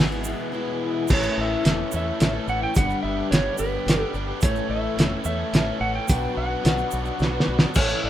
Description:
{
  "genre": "folk rock and heartland rock",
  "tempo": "108 BPM",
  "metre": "3/4",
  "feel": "straight",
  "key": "A mixolydian",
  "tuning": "A4 = 441 Hz",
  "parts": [
    { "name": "clean lap steel guitar", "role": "melody", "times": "0.0-8.1 s", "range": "B4 to G#5", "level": "-29 LUFS", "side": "right 2 dB", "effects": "tape echo" },
    { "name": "picked twelve-string acoustic guitar", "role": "accompaniment", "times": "0.0-8.1 s", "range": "G2 to A4", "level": "-30 LUFS", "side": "left 7 dB", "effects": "none" },
    { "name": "tonewheel organ", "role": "sustained chords", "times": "0.0-8.1 s", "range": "B3 to D5", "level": "-36 LUFS", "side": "right 1 dB", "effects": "overdrive, chorus vibrato, slow rotary speaker" },
    { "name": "crunchy overdriven guitar", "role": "riff", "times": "0.0-8.1 s", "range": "E2 to A4", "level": "-30 LUFS", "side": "right 2 dB", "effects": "none" },
    { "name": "fingered electric bass", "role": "bass", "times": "0.0-8.1 s", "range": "E1 to E2", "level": "-29 LUFS", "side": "equal", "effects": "none" },
    { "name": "cloth-damped thuddy drum kit", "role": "drums", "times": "0.0-7.9 s", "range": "crash cymbal, hi-hat, kick drum, snare drum", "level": "-21 LUFS", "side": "right 1 dB", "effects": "none" },
    { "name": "tube shaker", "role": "percussion", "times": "0.1-8.0 s", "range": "none", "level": "-38 LUFS", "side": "right 10 dB", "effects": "none" }
  ],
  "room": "moderate studio ambience, RT60 0.5 s",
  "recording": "rough home demo mix",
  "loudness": "-20 LUFS",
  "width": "side -12 dB against mid",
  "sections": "0.0-1.1 A section; 1.1-8.1 B section",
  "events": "break 0.5-1.1; drum fill 7.2-7.8",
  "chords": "0.0 E; 1.1 A; 2.8 G; 4.4 A; 6.1 Bm",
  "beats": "0.53 | 1.09 1.64 2.20 | 2.75 3.31 3.86 | 4.42 4.97 5.53 | 6.08 6.64 7.20 | 7.75"
}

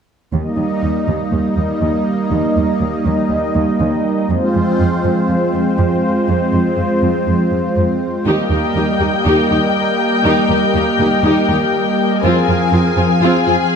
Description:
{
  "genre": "cinematic",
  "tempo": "121 BPM",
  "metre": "4/4",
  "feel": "straight",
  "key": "unclear",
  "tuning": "A4 = 440 Hz",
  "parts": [
    { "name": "brassy analog pad", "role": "sustained chords", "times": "0.3-13.8 s", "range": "F3 to F5", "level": "-16 LUFS", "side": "equal", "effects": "chorus" },
    { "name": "warm symphonic cello section", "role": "bass", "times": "0.3-13.5 s", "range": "Eb2 to F2", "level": "-19 LUFS", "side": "right 2 dB", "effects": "none" },
    { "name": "rich symphonic violin section", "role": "second line", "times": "8.3-13.8 s", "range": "Ab4 to Ab5", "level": "-18 LUFS", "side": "left 6 dB", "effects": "none" },
    { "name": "warm symphonic viola section", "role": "accompaniment", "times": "8.3-13.5 s", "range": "C4 to G4", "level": "-19 LUFS", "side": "equal", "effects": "none" }
  ],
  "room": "moderate scoring stage reverb, RT60 1.6 s",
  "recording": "dark, warm production",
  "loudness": "-13 LUFS",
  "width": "side -6 dB against mid",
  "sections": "0.3-8.3 A section; 8.3-13.8 B section",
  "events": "build-up 8.3-13.8",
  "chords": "0.3 Eb; 4.3 Fm; 8.3 Eb; 12.2 Fm",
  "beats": "| 0.33 0.83 1.32 1.82 | 2.31 2.81 3.31 3.80 | 4.30 4.79 5.29 5.79 | 6.28 6.78 7.27 7.77 | 8.26 8.76 9.26 9.75 | 10.25 10.74 11.24 11.74 | 12.23 12.73 13.22 13.72"
}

